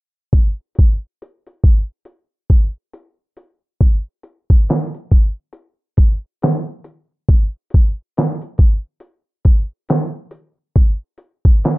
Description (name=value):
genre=hip hop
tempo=69 BPM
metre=4/4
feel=swing 58% on 16ths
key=none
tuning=none
part: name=lo-fi sampler-style drum kit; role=drums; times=0.3-11.8 s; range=handclaps, hi-hat, kick drum, snare drum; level=-12 LUFS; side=equal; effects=none
room=light reverb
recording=dark, warm production, low-pass filter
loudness=-15 LUFS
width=side -21 dB against mid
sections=0.3-11.8 A section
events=filter sweep 0.3-11.8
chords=none